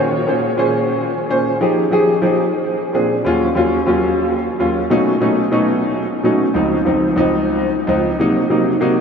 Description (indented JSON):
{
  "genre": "jazz",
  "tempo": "146 BPM",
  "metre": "4/4",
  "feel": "straight",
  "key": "Bb minor",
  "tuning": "A4 = 442 Hz",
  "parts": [
    { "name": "warm grand piano", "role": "solo", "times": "0.0-9.0 s", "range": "Db2 to C5", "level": "-14 LUFS", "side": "equal", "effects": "wide subtle chorus, diffuse ambient delay" }
  ],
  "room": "wet huge ambient reverb, RT60 7.9 s",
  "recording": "dreamy mix soaked in reverb",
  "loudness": "-14 LUFS",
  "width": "side -6 dB against mid",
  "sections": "0.0-9.0 A section",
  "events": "none",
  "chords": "0.0 Bbm7; 1.6 Fm7; 2.4 Bb7; 3.3 Ebm7; 4.9 B9; 6.5 Dbmaj7; 8.2 Cm7b5"
}